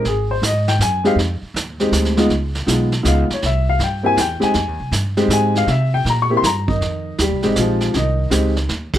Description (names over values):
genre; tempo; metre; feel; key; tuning
jazz piano trio; 160 BPM; 3/4; swing 66% on 8ths; F minor; A4 = 440 Hz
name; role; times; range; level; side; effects
warm upright piano; melody; 0.0-9.0 s; Eb3 to Db6; -18 LUFS; left 1 dB; none
upright bass; bass; 0.0-9.0 s; Ab1 to C3; -20 LUFS; equal; none
vintage brush drum kit; drums; 0.0-9.0 s; brushed snare drum, hi-hat, kick drum, ride cymbal, snare drum; -24 LUFS; right 3 dB; none
room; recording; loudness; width
light reverb; close, detailed microphones; -15 LUFS; side -12 dB against mid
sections
0.0-6.8 A section; 6.8-9.0 B section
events
upright piano solo 0.0-6.8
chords
0.0 Fm9; 2.3 Db7; 3.4 C; 4.6 Fm9; 5.7 C7; 6.8 Fm9